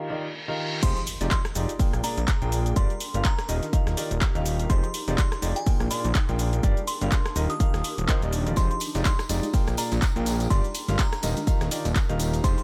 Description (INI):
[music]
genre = piano house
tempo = 124 BPM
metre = 4/4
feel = swing 57% on 16ths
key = unclear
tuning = A4 = 439 Hz
[part]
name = warm grand piano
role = riff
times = 0.0-12.6 s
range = Bb2 to G5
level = -34 LUFS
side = equal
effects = sidechain pumping, digital delay
[part]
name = reverse cymbal and impact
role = sound effects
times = 0.0-2.8 s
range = none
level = -39 LUFS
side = equal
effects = none
[part]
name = glassy synth bell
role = melody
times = 0.8-12.6 s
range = Ab5 to Eb6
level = -37 LUFS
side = equal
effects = chorus, digital delay
[part]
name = fat analog bass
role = bass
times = 0.8-12.6 s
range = Eb1 to Bb1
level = -29 LUFS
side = equal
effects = sidechain pumping
[part]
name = breakbeat sampler-style drum kit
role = drums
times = 0.8-12.6 s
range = hi-hat, snare drum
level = -43 LUFS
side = equal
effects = none
[part]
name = electronic kick drum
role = drums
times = 0.8-12.6 s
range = none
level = -26 LUFS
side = equal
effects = none
[part]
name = punchy analog drum machine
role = drums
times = 0.8-12.6 s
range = crash cymbal, handclaps, hi-hat, ride cymbal, rim click, shaker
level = -35 LUFS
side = equal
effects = none
[part]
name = granular cloud pad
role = texture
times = 2.2-12.6 s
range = D4 to Bb4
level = -41 LUFS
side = equal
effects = none
[part]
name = tambourine and congas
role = percussion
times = 8.6-12.6 s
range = none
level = -40 LUFS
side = equal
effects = none
[sound]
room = little or no reverb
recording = none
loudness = -25 LUFS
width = mono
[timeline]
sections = 0.8-12.6 A section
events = break 0.0-0.8; reverse cymbal 0.0-0.8; drop 0.8-12.6; impact 0.8-2.8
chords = 0.0 Ebmaj9; 0.8 Fm9; 1.8 Bb7; 2.8 Gm7; 3.5 Ebmaj9; 4.7 Fm9; 5.7 Bb7; 6.6 Gm7; 7.4 Ebmaj9; 8.6 Fm9; 9.5 Bb7; 10.5 Gm7; 11.2 Ebmaj9